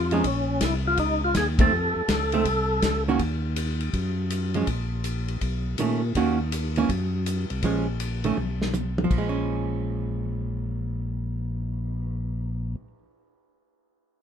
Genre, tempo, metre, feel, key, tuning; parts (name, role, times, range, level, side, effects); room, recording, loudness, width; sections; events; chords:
soul jazz organ trio; 163 BPM; 4/4; swing 65% on 8ths; Bb minor; A4 = 440 Hz
percussive tonewheel organ; melody; 0.0-3.0 s; Db4 to A4; -25 LUFS; equal; slow rotary speaker, overdrive, chorus vibrato
tonewheel organ; bass; 0.0-12.8 s; Bb1 to Bb2; -27 LUFS; equal; overdrive, stopped rotary speaker
archtop guitar, miked and amplified; accompaniment; 0.1-13.0 s; Eb3 to Gb4; -26 LUFS; right 4 dB
warm soul drum kit; drums; 0.1-12.0 s; crash cymbal, cymbal swell, hi-hat, kick drum, ride cymbal, snare drum, toms; -29 LUFS; left 1 dB
light reverb; minimal, uncompressed stereo recording; -23 LUFS; side -8 dB against mid
0.0-3.2 A section; 3.2-9.1 B section; 9.1-12.1 C section
band accent 1.5; drum fill 8.4-9.1
0.2 Bbm; 1.7 F7; 3.2 N.C.; 3.9 Gb5; 4.7 N.C.; 5.4 B9; 6.2 Ebm7; 6.9 N.C.; 7.6 Bbm7; 8.4 N.C.; 9.1 Bbm7